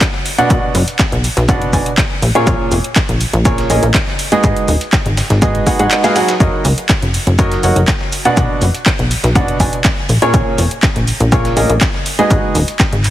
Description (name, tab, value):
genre	piano house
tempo	122 BPM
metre	4/4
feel	straight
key	unclear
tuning	A4 = 437 Hz
part	dusty soul sampler-style drum kit	drums	0.0-13.1 s	hi-hat, shaker, snare drum	-26 LUFS	equal	none
part	electronic kick drum	drums	0.0-12.9 s	none	-15 LUFS	equal	overdrive
part	house drum kit	drums	0.0-13.1 s	handclaps, hi-hat	-20 LUFS	equal	none
part	clear baby grand piano	riff	0.4-12.5 s	A#2 to G#5	-16 LUFS	right 1 dB	sidechain pumping, ping-pong delay
part	plucky analog bass	bass	0.5-13.1 s	D#1 to G#2	-15 LUFS	equal	sidechain pumping
room	light reverb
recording	heavily compressed radio sound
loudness	-11 LUFS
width	side -13 dB against mid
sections	0.0-13.1 A section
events	kick drops out 5.9-6.4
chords	0.3 Bm; 2.2 A#m7; 4.2 G#m7; 6.4 F#6; 8.1 Bm; 10.1 A#m7; 12.1 G#m7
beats	0.01 | 0.50 0.99 1.49 1.98 | 2.47 2.96 3.45 3.94 | 4.44 4.93 5.42 5.91 | 6.40 6.89 7.39 7.88 | 8.37 8.86 9.35 9.85 | 10.34 10.83 11.32 11.81 | 12.30 12.80